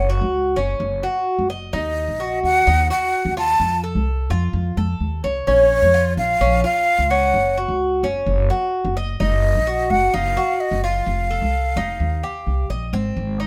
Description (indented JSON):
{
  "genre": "latin",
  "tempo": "129 BPM",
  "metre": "4/4",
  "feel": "straight",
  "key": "unclear",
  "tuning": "A4 = 440 Hz",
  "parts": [
    { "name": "breathy mellow silver concert flute", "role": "melody", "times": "0.0-12.7 s", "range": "Db5 to A5", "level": "-22 LUFS", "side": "equal", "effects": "none" },
    { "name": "Cuban tres", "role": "arpeggios", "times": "0.0-13.5 s", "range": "C4 to Eb5", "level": "-24 LUFS", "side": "equal", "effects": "none" },
    { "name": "upright bass", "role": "bass", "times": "0.0-13.5 s", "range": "F1 to F2", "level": "-24 LUFS", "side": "equal", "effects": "none" }
  ],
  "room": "light reverb",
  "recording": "none",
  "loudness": "-20 LUFS",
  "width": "mono",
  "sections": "0.0-12.9 A section",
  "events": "none",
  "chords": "0.0 Gb5; 1.7 Ebm; 3.6 F; 5.5 Bbm; 7.3 Gb5; 9.2 Ebm/Gb; 11.1 F; 12.0 Eb; 12.9 Ab"
}